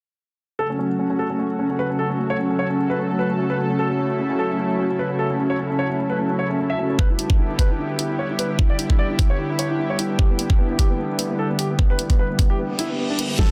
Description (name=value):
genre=heavy wobble dubstep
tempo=150 BPM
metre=4/4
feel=swing 55% on 16ths, half-time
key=F# phrygian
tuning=A4 = 440 Hz
part: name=warm baby grand piano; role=melody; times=0.6-13.5 s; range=B3 to E5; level=-27 LUFS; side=equal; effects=low-pass filter, digital delay
part: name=lush unison pad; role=sustained chords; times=0.6-13.5 s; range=C#3 to A4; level=-27 LUFS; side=equal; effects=chorus, sidechain pumping
part: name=deep dark ambient pad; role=texture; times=3.1-13.5 s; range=E4 to A5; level=-33 LUFS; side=equal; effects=chorus, built-in reverb, sidechain pumping
part: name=electronic kick drum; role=drums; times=7.0-13.5 s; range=none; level=-20 LUFS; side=equal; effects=none
part: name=dubstep drum kit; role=drums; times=7.2-13.5 s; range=hi-hat, snare drum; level=-28 LUFS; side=equal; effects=low-pass filter on hats, low-pass filter on snare
part: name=reverse cymbal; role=sound effects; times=12.7-13.4 s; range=none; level=-31 LUFS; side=equal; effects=none
room=light reverb, digital ambience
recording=dense, heavily limited modern master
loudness=-21 LUFS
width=mono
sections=0.6-13.4 A section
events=break 12.6-13.4; reverse cymbal 12.7-13.4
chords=0.6 F#m; 7.0 Em7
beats=| 0.59 0.99 1.39 1.79 | 2.19 2.59 2.99 3.39 | 3.79 4.19 4.59 4.99 | 5.39 5.79 6.19 6.59 | 6.99 7.39 7.79 8.19 | 8.59 8.99 9.39 9.79 | 10.19 10.59 10.99 11.39 | 11.79 12.19 12.59 12.99 | 13.39